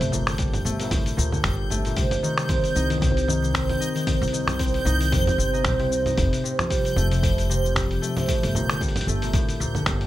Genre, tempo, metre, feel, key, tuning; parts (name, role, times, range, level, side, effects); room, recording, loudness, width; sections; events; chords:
folktronica; 114 BPM; 4/4; swing 56% on 16ths; C dorian; A4 = 439 Hz
concert harp; arpeggios; 0.0-10.1 s; A2 to Eb4; -25 LUFS; equal; tape echo, plate reverb
upright bass; bass; 0.0-10.1 s; F1 to F2; -26 LUFS; equal
lo-fi sampler-style drum kit; drums; 0.0-10.1 s; cabasa, congas, finger snaps, hi-hat; -28 LUFS; equal; small room ambience
backwards swelling texture; texture; 0.0-10.1 s; G6; -34 LUFS; right 2 dB; built-in reverb
electronic kick drum; drums; 0.4-10.0 s; -26 LUFS; equal; small room ambience
light reverb; -20 LUFS; side -14 dB against mid
0.0-10.1 A section
0.0 Gmadd9; 2.0 Cm; 6.2 Fadd9; 8.3 Gmadd9